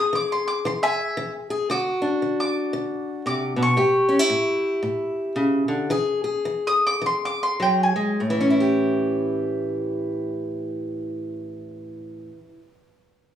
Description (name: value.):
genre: acoustic country blues, solo or duo.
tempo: 98-115 BPM.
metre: 4/4.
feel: swing 60% on 8ths.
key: A mixolydian.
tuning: A4 = 440 Hz.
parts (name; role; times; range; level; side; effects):
mandolin; melody; 0.0-8.2 s; E5 to D#6; -23 LUFS; equal; plate reverb.
fingerpicked acoustic archtop guitar; accompaniment; 0.0-12.7 s; A2 to G#4; -22 LUFS; equal; none.
room: moderate small room reverb, RT60 0.5 s.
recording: studio reverb.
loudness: -21 LUFS.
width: side -10 dB against mid.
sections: 0.0-8.2 A section; 8.2-13.1 B section.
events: mandolin solo 0.0-8.2; slowing down 3.8-8.2.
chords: 0.0 E; 1.7 D7; 3.8 A7; 5.9 E; 8.2 A7.